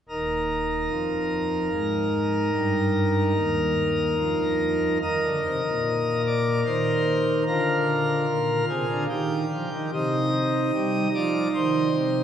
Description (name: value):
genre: classical, chorale-style piece for pipe organ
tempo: 74 BPM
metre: 3/4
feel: rubato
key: Eb major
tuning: A4 = 440 Hz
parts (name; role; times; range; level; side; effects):
- pipe organ, plenum; solo; 0.1-12.2 s; Eb1 to Eb5; -22 LUFS; equal; none
room: wet cathedral reverb, RT60 5.0 s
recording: heard from further back in the room, nothing above 10.9 kHz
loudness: -22 LUFS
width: side -9 dB against mid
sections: 0.1-5.0 A section; 5.0-12.2 B section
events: none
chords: 0.1 Eb; 5.0 Eb5; 7.5 Bb9; 9.1 Eb; 9.9 Cm